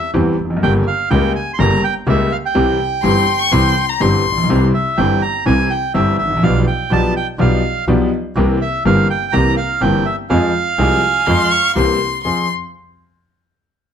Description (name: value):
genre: tango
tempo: 124 BPM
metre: 4/4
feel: rubato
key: F harmonic minor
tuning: A4 = 440 Hz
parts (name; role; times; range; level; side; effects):
- bandoneon; melody; 0.0-11.7 s; E5 to C6; -19 LUFS; right 4 dB; plate reverb
- warm concert grand piano; accompaniment; 0.1-12.5 s; G1 to Ab4; -16 LUFS; left 2 dB; none
- bright double bass; bass; 0.1-12.4 s; F1 to F2; -19 LUFS; right 2 dB; none
- warm violin; second line; 3.0-4.6, 10.8-12.5 s; Ab5 to Db6; -18 LUFS; left 7 dB; none
room: moderate club reverb, RT60 0.8 s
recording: none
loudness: -13 LUFS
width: side -8 dB against mid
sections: 0.0-12.2 A section; 12.2-13.9 B section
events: none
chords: 0.0 C/E; 0.6 Gdim; 2.6 C; 6.4 G7/B; 8.4 C7; 10.3 Fm; 11.8 C7; 12.2 Fm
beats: 0.14 | 0.62 1.10 1.59 2.07 | 2.55 3.04 3.52 4.00 | 4.49 4.97 5.46 5.94 | 6.43 6.91 7.39 7.88 | 8.36 8.84 9.33 9.81 | 10.30 10.78 11.27 11.76 | 12.25